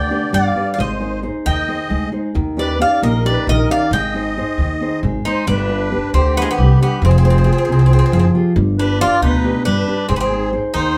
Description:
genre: greek folk, Greek bouzouki band.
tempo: 271 BPM (eighths).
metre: 7/8.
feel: straight.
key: G phrygian dominant.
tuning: A4 = 440 Hz.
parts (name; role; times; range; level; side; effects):
Greek bouzouki; melody; 0.0-11.0 s; Ab3 to G5; -22 LUFS; equal; none.
musette accordion; second line; 0.0-11.0 s; F4 to Eb5; -26 LUFS; equal; none.
nylon-string guitar; accompaniment; 0.0-11.0 s; B2 to G5; -22 LUFS; equal; none.
upright bass; bass; 0.0-11.0 s; F1 to Eb2; -19 LUFS; equal; none.
room: wet studio reverb, RT60 0.6 s.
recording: heard from further back in the room.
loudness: -16 LUFS.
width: mono.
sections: 0.0-5.5 A section; 5.5-11.0 A section.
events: speeding up 0.0-11.0.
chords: 0.0 G; 0.8 Ab; 2.4 Eb7; 3.9 Ab; 5.5 G; 7.0 Fmadd9; 8.6 G; 10.1 Ab.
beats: 0.10 0.33 0.55 | 0.78 1.00 1.23 1.45 1.68 1.90 2.13 | 2.35 2.58 2.80 3.02 3.25 3.47 3.69 | 3.92 4.14 4.36 4.59 4.81 5.03 5.25 | 5.47 5.70 5.92 6.14 6.36 6.58 6.80 | 7.02 7.24 7.46 7.68 7.90 8.12 8.34 | 8.56 8.78 9.00 9.22 9.44 9.65 9.87 | 10.09 10.31 10.53 10.74 10.96.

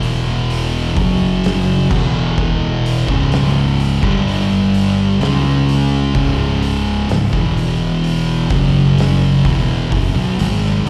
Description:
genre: stoner and doom metal.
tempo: 64 BPM.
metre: 4/4.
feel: straight.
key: C# phrygian.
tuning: A4 = 439 Hz.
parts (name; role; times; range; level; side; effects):
thick fuzz guitar; riff; 0.0-10.9 s; C#2 to C#4; -20 LUFS; equal; distortion, slapback echo.
thick fuzz guitar; riff; 0.0-10.9 s; C#2 to C#4; -21 LUFS; equal; distortion.
overdriven fingered electric bass; bass; 0.0-10.9 s; C#1 to C#2; -22 LUFS; equal; none.
oversized low-tuned drum kit; drums; 0.0-10.9 s; crash cymbal, hi-hat, kick drum, snare drum; -24 LUFS; equal; none.
room: studio reverb.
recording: live gig heard through the venue's PA, recital hall reverb.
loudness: -16 LUFS.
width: mono.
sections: 0.0-10.9 A section.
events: none.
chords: 0.0 E5; 1.0 F#5; 1.9 E5; 3.1 C#5; 4.0 G5; 5.2 C#5; 7.3 E5; 8.5 F#5; 9.4 C#m.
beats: 0.49 1.43 | 2.37 3.32 4.26 5.20 | 6.15 7.09 8.03 8.98 | 9.92 10.87.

